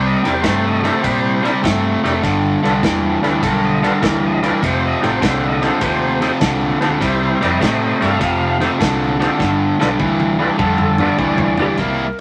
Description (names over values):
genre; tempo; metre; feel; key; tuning
electric blues shuffle; 100 BPM; 4/4; swing 67% on 8ths; unclear; A4 = 440 Hz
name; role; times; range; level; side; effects
tonewheel organ; accompaniment; 0.0-12.2 s; D4 to F5; -24 LUFS; equal; slow rotary speaker, overdrive
cranked stack guitar; riff; 0.0-12.1 s; F2 to E4; -18 LUFS; equal; overdrive
vintage muted fingered electric bass; bass; 0.0-12.1 s; F1 to Bb2; -26 LUFS; equal; none
natural country drum kit; drums; 0.2-12.0 s; kick drum, ride cymbal, snare drum, toms; -26 LUFS; equal; none
clean lap steel guitar; melody; 11.6-12.2 s; G4 to Bb4; -26 LUFS; equal; none
room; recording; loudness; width
moderate studio reverb, RT60 0.8 s; vinyl crackle; -16 LUFS; mono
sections
0.0-11.8 A section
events
drum fill 9.4-11.8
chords
0.0 C7; 2.2 G7; 4.6 F7; 7.0 C7; 8.2 F7; 9.4 G7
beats
0.45 1.04 1.64 | 2.24 2.84 3.43 4.03 | 4.63 5.22 5.82 6.42 | 7.01 7.61 8.21 8.80 | 9.40 10.00 10.59 11.19 | 11.79